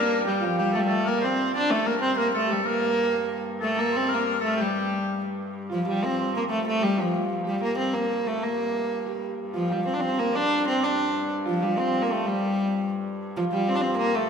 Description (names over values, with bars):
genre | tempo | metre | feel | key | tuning
medieval | 125 BPM (dotted quarters) | 6/8 | straight | G minor | A4 = 442 Hz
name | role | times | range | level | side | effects
warm viola da gamba | melody | 0.0-14.3 s | F3 to D4 | -24 LUFS | equal | none
bright shawm | second line | 0.0-5.2 s | G4 to D5 | -29 LUFS | left 4 dB | none
concert harp | second line | 0.0-14.3 s | F4 to D5 | -30 LUFS | right 2 dB | none
rich hurdy-gurdy | drone | 0.0-14.3 s | G2 | -36 LUFS | right 1 dB | none
room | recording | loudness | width
wet concert hall reverb, RT60 2.4 s | minimal, uncompressed stereo recording | -23 LUFS | side -6 dB against mid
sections
0.0-5.5 A section; 5.5-13.2 B section; 13.2-14.3 B section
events
none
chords
none